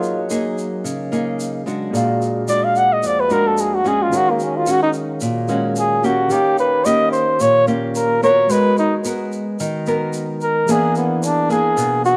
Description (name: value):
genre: bossa nova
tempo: 110 BPM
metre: 4/4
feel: straight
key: Eb minor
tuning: A4 = 440 Hz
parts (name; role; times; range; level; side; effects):
- mellow flugelhorn; melody; 0.0-12.2 s; Bb3 to Gb5; -18 LUFS; equal; none
- nylon-string guitar; accompaniment; 0.0-12.2 s; F2 to Bb4; -23 LUFS; equal; none
- tine electric piano; accompaniment; 0.0-12.2 s; Eb3 to F5; -28 LUFS; equal; none
- egg shaker; percussion; 0.0-12.2 s; none; -36 LUFS; equal; none
room: moderate echo chamber reverb, RT60 2.1 s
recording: none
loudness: -18 LUFS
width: mono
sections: 0.0-12.2 A section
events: flugelhorn solo 0.0-12.2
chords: 0.0 Gb69; 1.9 Bb7b13; 4.1 Ebm11; 6.3 Eb7; 8.5 Abm9; 10.7 E7#11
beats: 0.31 0.85 1.40 | 1.94 2.49 3.03 3.58 | 4.13 4.67 5.22 5.76 | 6.31 6.86 7.40 7.95 | 8.50 9.04 9.59 10.13 | 10.68 11.23 11.77